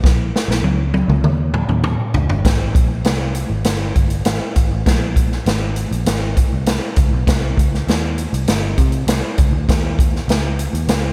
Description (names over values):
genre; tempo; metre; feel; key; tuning
uptempo 1960s-style soul; 100 BPM; 4/4; straight; Ab major; A4 = 445 Hz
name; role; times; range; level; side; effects
vintage muted picked electric bass; bass; 0.0-11.1 s; G1 to C3; -22 LUFS; equal; none
swinging big-band drum kit; drums; 0.0-11.0 s; hi-hat, kick drum, snare drum, toms; -19 LUFS; equal; none
room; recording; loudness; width
light reverb; none; -17 LUFS; mono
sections
0.0-2.5 A section; 2.5-11.1 B section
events
drum fill 0.0-2.5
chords
none